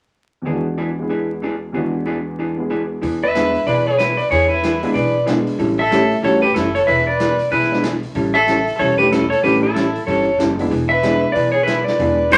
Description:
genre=country, western swing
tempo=187 BPM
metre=4/4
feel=swing 61% on 8ths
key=E mixolydian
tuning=A4 = 440 Hz
part: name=warm upright piano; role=accompaniment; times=0.4-12.2 s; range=E2 to G#4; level=-24 LUFS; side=equal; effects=none
part: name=vintage hollow-body jazz guitar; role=accompaniment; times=0.5-12.4 s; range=E3 to A4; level=-24 LUFS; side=equal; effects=none
part: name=upright bass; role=bass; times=3.0-12.4 s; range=E1 to E2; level=-29 LUFS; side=equal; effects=none
part: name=swinging big-band drum kit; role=drums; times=3.0-12.4 s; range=hi-hat, kick drum, snare drum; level=-31 LUFS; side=equal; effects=none
part: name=clean lap steel guitar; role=melody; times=3.2-12.4 s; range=A4 to E5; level=-20 LUFS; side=equal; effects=none
part: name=dark fiddle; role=second line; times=3.2-12.4 s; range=E4 to B4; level=-24 LUFS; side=equal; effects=none
part: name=pedal steel guitar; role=second line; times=12.3-12.4 s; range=D5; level=-10 LUFS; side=equal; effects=none
room=wet studio reverb, RT60 0.5 s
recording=vinyl crackle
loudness=-18 LUFS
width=mono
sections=0.5-3.0 A section; 3.0-12.4 B section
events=none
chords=0.5 E7; 5.6 A7; 6.9 E7; 8.2 A7; 10.7 E7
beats=| 0.47 0.79 1.11 1.43 | 1.75 2.07 2.39 2.71 | 3.03 3.35 3.67 3.99 | 4.31 4.63 4.96 5.28 | 5.59 5.92 6.24 6.56 | 6.88 7.20 7.52 7.84 | 8.16 8.48 8.80 9.12 | 9.44 9.76 10.08 10.40 | 10.72 11.04 11.36 11.68 | 12.00 12.32

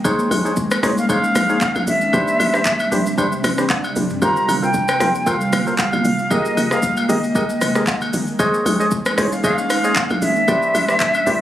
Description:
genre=amapiano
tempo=115 BPM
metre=4/4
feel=swing 55% on 16ths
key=unclear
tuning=A4 = 444 Hz
part: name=ethereal airy pad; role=sustained chords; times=0.0-11.4 s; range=B2 to G5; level=-23 LUFS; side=equal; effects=ensemble chorus, built-in reverb, sidechain pumping
part: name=percussive organ stab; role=stabs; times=0.0-11.4 s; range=D4 to Eb5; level=-22 LUFS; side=equal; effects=chorus, tape echo
part: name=hollow log drum bass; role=bass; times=0.0-11.4 s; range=F1 to C2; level=-24 LUFS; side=equal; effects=none
part: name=afro-pop drum kit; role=drums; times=0.0-11.4 s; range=handclaps, hi-hat, kick drum, rim click, shaker, toms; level=-22 LUFS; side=equal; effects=none
part: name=agogo bells and woodblock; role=percussion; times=0.0-11.3 s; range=none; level=-27 LUFS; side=left 2 dB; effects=none
part: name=concert flute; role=melody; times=0.8-11.4 s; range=Db5 to Bb5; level=-20 LUFS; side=equal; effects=tape echo
room=light reverb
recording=recorded on a phone in the room, studio reverb, compression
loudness=-15 LUFS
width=side -12 dB against mid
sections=0.0-11.4 A section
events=none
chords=0.0 Bbm11; 2.1 Am11; 4.2 Gm11; 6.0 Fm11; 8.4 Bbm11; 10.5 Am11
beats=| 0.05 0.57 1.09 1.61 | 2.13 2.66 3.18 3.70 | 4.22 4.74 5.27 5.79 | 6.31 6.83 7.35 7.87 | 8.40 8.92 9.44 9.96 | 10.48 11.01

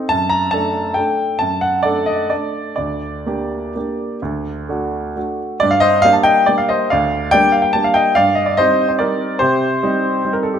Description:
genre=classical, piano waltz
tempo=118-152 BPM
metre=3/4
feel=rubato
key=G minor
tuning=A4 = 440 Hz
part: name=warm baby grand piano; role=solo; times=0.0-10.6 s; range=D2 to Bb5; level=-14 LUFS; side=equal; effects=none
room=wet recital hall reverb, RT60 1.5 s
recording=none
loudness=-14 LUFS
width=side -8 dB against mid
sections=0.0-5.6 A section; 5.6-10.6 B section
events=none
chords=0.1 D/F#; 2.8 Gm/D; 4.2 D; 5.6 Gm; 8.2 Cm/G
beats=| 0.11 0.53 0.97 | 1.41 1.85 2.31 | 2.77 3.25 3.76 | 4.23 4.69 5.16 | 5.61 6.03 6.47 | 6.90 7.32 7.75 | 8.16 8.57 9.00 | 9.42 9.82 10.24

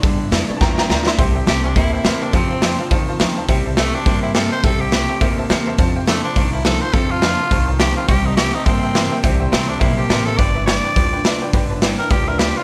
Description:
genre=rockabilly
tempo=209 BPM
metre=4/4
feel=swing 58% on 8ths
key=C major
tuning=A4 = 440 Hz
part: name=picked steel-string acoustic guitar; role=accompaniment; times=0.0-12.6 s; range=C3 to D5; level=-30 LUFS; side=equal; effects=none
part: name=tack piano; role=accompaniment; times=0.0-12.6 s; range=A3 to C6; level=-29 LUFS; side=equal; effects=none
part: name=electric guitar through a small old amp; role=riff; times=0.0-12.6 s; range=F2 to Bb3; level=-27 LUFS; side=equal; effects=none
part: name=upright bass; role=bass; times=0.0-12.5 s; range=G1 to G2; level=-25 LUFS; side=equal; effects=none
part: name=raw garage drum kit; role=drums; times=0.0-12.5 s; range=hi-hat, kick drum, snare drum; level=-20 LUFS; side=equal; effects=none
part: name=growling tenor saxophone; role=melody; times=1.5-12.6 s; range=A3 to D5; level=-25 LUFS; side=equal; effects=slapback echo
room=little or no reverb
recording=none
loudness=-17 LUFS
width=mono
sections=0.0-1.2 A section; 1.2-12.6 B section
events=honky-tonk piano solo 0.0-1.2; drum fill 0.6-1.2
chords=0.0 G6; 1.2 C6; 2.3 F6; 3.5 C6; 5.8 F6; 8.1 C6; 10.4 G6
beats=| 0.03 0.32 0.61 0.89 | 1.18 1.47 1.76 2.05 | 2.33 2.62 2.91 3.20 | 3.49 3.77 4.06 4.35 | 4.64 4.92 5.21 5.50 | 5.79 6.07 6.36 6.65 | 6.94 7.22 7.51 7.80 | 8.09 8.37 8.66 8.95 | 9.24 9.52 9.81 10.10 | 10.38 10.67 10.96 11.25 | 11.53 11.82 12.11 12.39

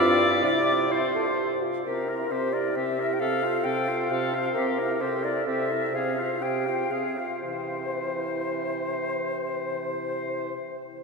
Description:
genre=quick classical-period movement for wind quintet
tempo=114-136 BPM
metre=3/4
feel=rubato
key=C major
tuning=A4 = 440 Hz
part: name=concert flute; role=melody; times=0.0-10.5 s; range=Bb4 to G5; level=-30 LUFS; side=left 5 dB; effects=none
part: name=clear oboe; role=second line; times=0.0-10.5 s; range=G4 to D5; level=-31 LUFS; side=left 2 dB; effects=none
part: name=warm French horn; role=accompaniment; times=0.0-10.5 s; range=E3 to A4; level=-32 LUFS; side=right 1 dB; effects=none
part: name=warm clarinet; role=accompaniment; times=0.0-10.5 s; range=E4 to A4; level=-31 LUFS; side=right 4 dB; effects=none
part: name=warm bassoon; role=bass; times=0.0-10.5 s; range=G2 to C3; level=-32 LUFS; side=right 2 dB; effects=none
room=wet cathedral reverb, RT60 4.5 s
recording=none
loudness=-24 LUFS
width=side -4 dB against mid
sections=0.0-1.9 A section; 1.9-7.4 B section; 7.4-10.4 C section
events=slowing down 3.9-7.4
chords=0.4 C; 1.9 C7; 3.2 F/C; 4.5 C7; 5.9 Fm/C; 7.4 C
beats=| 0.44 0.92 1.39 | 1.86 2.31 2.76 | 3.21 3.65 4.10 | 4.54 5.00 5.46 | 5.93 6.41 6.91 | 7.42 7.93 8.43 | 8.93 9.43 9.94

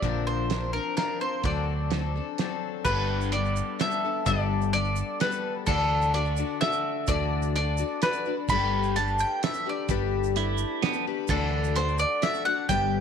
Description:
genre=folk rock and heartland rock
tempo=128 BPM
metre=3/4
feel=straight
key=G major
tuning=A4 = 440 Hz
part: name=bowl-back mandolin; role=melody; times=0.0-13.0 s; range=A4 to B5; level=-28 LUFS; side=right 1 dB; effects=none
part: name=picked twelve-string acoustic guitar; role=accompaniment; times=0.0-13.0 s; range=G2 to D5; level=-30 LUFS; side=left 13 dB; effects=none
part: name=fingered electric bass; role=bass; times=0.0-13.0 s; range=G1 to D2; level=-28 LUFS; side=right 1 dB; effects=none
part: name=cloth-damped thuddy drum kit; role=drums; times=0.0-12.8 s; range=crash cymbal, hi-hat, kick drum, snare drum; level=-32 LUFS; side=right 6 dB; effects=none
part: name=tube shaker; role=percussion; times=2.9-12.8 s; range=none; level=-44 LUFS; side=right 20 dB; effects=none
part: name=clean electric guitar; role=second line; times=10.4-11.0 s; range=B3 to E4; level=-31 LUFS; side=right 11 dB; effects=harmonic tremolo
room=light reverb, studio ambience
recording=1960s-style stereo with parts hard left and right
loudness=-24 LUFS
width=side -7 dB against mid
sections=0.0-2.9 A section; 2.9-13.0 B section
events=none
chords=0.0 Bbadd9; 1.4 D7; 2.9 Gadd9; 5.7 Dadd9; 8.5 Gadd9; 11.3 Dadd9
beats=| 0.02 0.50 0.97 | 1.44 1.91 2.38 | 2.85 3.33 3.80 | 4.27 4.74 5.20 | 5.67 6.14 6.61 | 7.08 7.54 8.01 | 8.48 8.95 9.41 | 9.88 10.35 10.82 | 11.29 11.75 12.22 | 12.69

